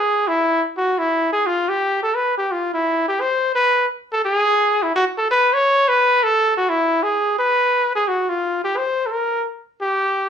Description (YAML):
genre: jazz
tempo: 172 BPM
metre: 4/4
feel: swing 64% on 8ths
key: unclear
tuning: A4 = 440 Hz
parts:
  - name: breathy trumpet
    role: solo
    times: 0.0-10.3 s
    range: E4 to C#5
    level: -16 LUFS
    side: equal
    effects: none
room: moderate club reverb, RT60 0.7 s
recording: heard from further back in the room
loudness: -16 LUFS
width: side -8 dB against mid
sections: 0.0-2.8 A section; 2.8-10.3 B section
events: none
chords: none